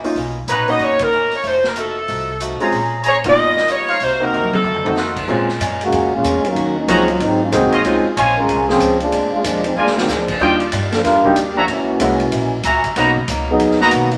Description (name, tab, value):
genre	jazz, big band swing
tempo	187 BPM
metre	4/4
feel	swing 63% on 8ths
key	Bb minor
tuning	A4 = 439 Hz
part	clear baby grand piano	accompaniment	0.0-8.0, 10.4-13.2 s	Gb3 to Ab4	-22 LUFS	equal	none
part	picked swing-style acoustic guitar	accompaniment	0.0-14.1 s	Gb2 to C5	-28 LUFS	equal	none
part	upright bass	bass	0.0-14.2 s	F1 to Bb2	-30 LUFS	equal	none
part	swinging big-band drum kit	drums	0.0-14.2 s	crash cymbal, hi-hat, kick drum, ride cymbal, snare drum, toms	-28 LUFS	equal	none
part	edgy saxophone section	melody	0.5-5.1 s	A4 to D#5	-19 LUFS	equal	none
part	clear trumpet section	stabs	0.5-13.9 s	D#4 to A#5	-21 LUFS	equal	none
part	mellow trombone section	second line	5.8-14.2 s	Db3 to Bb4	-19 LUFS	equal	none
room	wet studio reverb, RT60 0.9 s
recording	none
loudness	-17 LUFS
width	mono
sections	0.0-5.3 A section; 5.3-14.2 B section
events	band accent 1.0, 3.2; drum fill 4.3-5.0, 9.8-10.1; trombone section solo 5.3-14.2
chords	0.2 Bmaj9; 1.4 F7b9; 2.7 Bbm9; 3.4 G7alt; 4.0 Cm7b5; 4.6 F7b9; 5.3 Bbm7; 6.6 Ebm7; 7.2 Ab7; 7.8 Dbmaj7; 9.1 Bb7; 10.4 Ebmaj9; 11.7 Gb7; 13.0 Bmaj7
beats	| 0.16 0.48 0.80 1.12 | 1.44 1.76 2.08 2.40 | 2.72 3.04 3.36 3.68 | 4.00 4.33 4.64 4.96 | 5.29 5.61 5.93 6.25 | 6.57 6.89 7.21 7.53 | 7.85 8.17 8.49 8.81 | 9.13 9.45 9.77 10.09 | 10.41 10.72 11.04 11.36 | 11.68 12.00 12.32 12.64 | 12.96 13.28 13.60 13.92